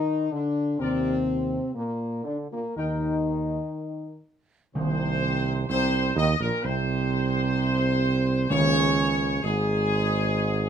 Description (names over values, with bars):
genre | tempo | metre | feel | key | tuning
classical | 58-65 BPM | 4/4 | straight | unclear | A4 = 439 Hz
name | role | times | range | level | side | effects
clear trombone section | sustained chords | 0.0-10.7 s | Ab2 to Eb3 | -31 LUFS | right 1 dB | none
warm French horn section | sustained chords | 0.0-10.7 s | Ab3 to Eb4 | -28 LUFS | left 2 dB | none
clear trumpet section | melody | 0.8-10.7 s | Ab4 to G5 | -28 LUFS | left 1 dB | none
mellow tuba | bass | 0.8-10.7 s | Ab1 to Eb2 | -27 LUFS | right 4 dB | none
timpani | percussion | 4.8-9.9 s | Eb3 | -30 LUFS | right 1 dB | none
room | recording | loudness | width
light reverb | close, detailed microphones | -23 LUFS | side -8 dB against mid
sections
0.0-4.8 A section; 4.8-10.7 B section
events
none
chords
0.0 N.C.; 0.8 Bb/Eb; 2.8 N.C.; 4.8 Bbsus24; 8.5 Db5